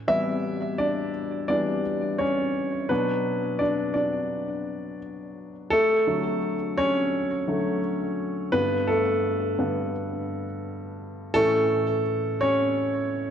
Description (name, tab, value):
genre	pop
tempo	85 BPM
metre	4/4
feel	straight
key	D major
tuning	A4 = 440 Hz
part	warm grand piano	solo	0.1-13.3 s	G2 to E5	-23 LUFS	equal	digital delay
room	moderate concert hall reverb, RT60 1.9 s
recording	worn, warbling old tape, cassette tape, warbly pitch drift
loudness	-23 LUFS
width	side -8 dB against mid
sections	0.0-5.7 A section; 5.7-13.3 B section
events	grand piano solo 0.0-5.7, 5.7-13.3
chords	0.0 Em; 2.9 Bm; 5.7 D; 8.5 Gadd9; 11.4 A